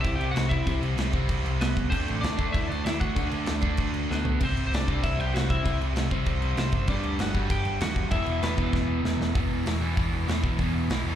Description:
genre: punk rock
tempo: 194 BPM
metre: 4/4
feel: straight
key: E minor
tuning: A4 = 440 Hz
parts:
  - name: lightly driven lead guitar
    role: melody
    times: 0.0-9.0 s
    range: B3 to G5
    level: -32 LUFS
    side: left 1 dB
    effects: slapback echo, digital delay
  - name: overdriven electric guitar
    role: riff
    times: 0.0-11.2 s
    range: E2 to D4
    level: -29 LUFS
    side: right 1 dB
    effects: none
  - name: overdriven picked electric bass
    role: bass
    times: 0.0-11.2 s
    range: E1 to E2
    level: -29 LUFS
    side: equal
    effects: none
  - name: big rock drum kit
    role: drums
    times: 0.0-11.0 s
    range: crash cymbal, hi-hat, kick drum, snare drum, toms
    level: -29 LUFS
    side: equal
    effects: none
room: small room ambience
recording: live gig heard through the venue's PA, club reverb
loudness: -24 LUFS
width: side -10 dB against mid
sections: 0.0-9.3 A section; 9.3-11.2 B section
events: drum fill 4.1-4.4, 8.7-9.3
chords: 0.0 C; 1.9 D; 4.4 C; 6.9 G5; 8.1 E5

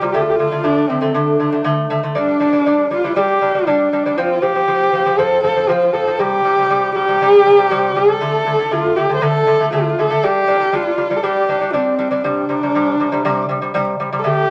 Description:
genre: mongolian traditional, Mongolian folk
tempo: 119 BPM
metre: 4/4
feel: straight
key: unclear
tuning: A4 = 440 Hz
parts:
  - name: dark horsehead fiddle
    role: melody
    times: 0.0-14.5 s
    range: C4 to C5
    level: -18 LUFS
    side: equal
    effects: none
  - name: lute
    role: arpeggios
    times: 0.0-14.4 s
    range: C3 to D4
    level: -20 LUFS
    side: equal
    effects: none
room: wet studio reverb, RT60 0.8 s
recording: vinyl crackle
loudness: -16 LUFS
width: mono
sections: 0.0-14.2 A section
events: none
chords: 0.1 D5; 2.2 G5; 4.2 F5; 6.2 C5; 8.2 D5; 10.2 G5; 12.2 C5

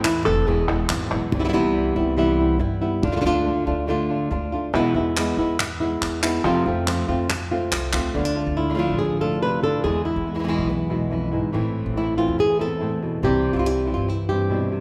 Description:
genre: flamenco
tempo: 141 BPM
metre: 4/4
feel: straight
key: unclear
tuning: A4 = 439 Hz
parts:
  - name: flamenco guitar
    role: melody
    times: 0.0-14.8 s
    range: E2 to B4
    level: -24 LUFS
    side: equal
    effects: none
  - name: flamenco guitar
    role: stabs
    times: 0.0-14.8 s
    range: B2 to F4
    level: -31 LUFS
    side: equal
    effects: none
  - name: upright bass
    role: bass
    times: 0.0-14.8 s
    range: E1 to G2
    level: -30 LUFS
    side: equal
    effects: none
  - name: palmas hand claps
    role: percussion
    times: 0.0-1.3, 4.7-8.1 s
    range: none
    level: -29 LUFS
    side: equal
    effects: none
room: wet recital hall reverb, RT60 1.4 s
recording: recorded in a church or concert hall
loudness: -22 LUFS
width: mono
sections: 0.0-1.3 A section; 1.3-8.1 B section; 8.1-14.8 C section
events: nylon-string guitar solo 0.0-1.3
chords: 0.5 E; 1.3 Cmaj7; 3.0 Dm; 4.7 E; 6.4 F; 8.1 Dm; 9.8 E; 11.5 Am; 13.2 C

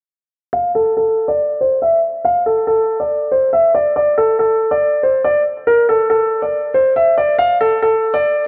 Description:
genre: hip hop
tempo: 140 BPM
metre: 4/4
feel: half-time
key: D minor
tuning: A4 = 444 Hz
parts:
  - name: dark grand piano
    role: melody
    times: 0.5-8.4 s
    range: A4 to F5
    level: -15 LUFS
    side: equal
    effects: low-pass filter
room: moderate lush hall reverb, RT60 2.5 s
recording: nothing above 7.5 kHz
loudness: -15 LUFS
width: mono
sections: 0.5-8.5 A section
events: filter sweep on grand piano 0.5-8.5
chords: none

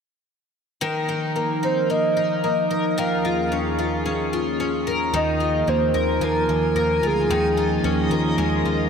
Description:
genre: dream pop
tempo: 111 BPM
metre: 4/4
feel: straight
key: unclear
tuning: A4 = 440 Hz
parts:
  - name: warbly tape-like pad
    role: sustained chords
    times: 1.0-8.9 s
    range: Eb2 to Bb4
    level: -25 LUFS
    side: right 1 dB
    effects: chorus, built-in reverb
  - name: picked twelve-string acoustic guitar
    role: arpeggios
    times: 0.8-8.9 s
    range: Eb3 to Bb4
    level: -24 LUFS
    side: left 3 dB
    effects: analog chorus, digital delay
  - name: soft octave-layered synth lead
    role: melody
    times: 1.6-8.1 s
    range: Ab4 to F5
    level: -23 LUFS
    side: equal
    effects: chorus, phaser, digital delay
  - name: vintage muted picked electric bass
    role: bass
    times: 5.1-8.9 s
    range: D2 to Eb2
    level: -26 LUFS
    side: right 1 dB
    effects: none
room: moderate huge ambient reverb, RT60 4.1 s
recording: none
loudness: -19 LUFS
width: side -6 dB against mid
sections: 0.8-5.1 A section; 5.1-8.9 B section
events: none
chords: 0.8 Ebsus2; 3.0 Db6/Eb; 5.1 Ebsus2; 7.3 Db6/Eb

